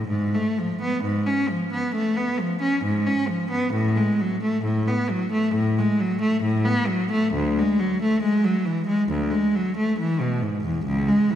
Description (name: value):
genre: classical, baroque-style suite movement for unaccompanied cello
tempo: 67 BPM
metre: 4/4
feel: rubato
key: unclear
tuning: A4 = 440 Hz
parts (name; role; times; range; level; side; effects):
- rich cello; solo; 0.0-11.4 s; C#2 to C#4; -20 LUFS; equal; none
room: wet church reverb, RT60 2.7 s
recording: none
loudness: -20 LUFS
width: side -10 dB against mid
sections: 0.0-11.4 A section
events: none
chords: none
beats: | 0.08 1.03 1.94 2.82 | 3.72 4.63 5.54 6.43 | 7.34 8.24 9.11 9.98 | 10.86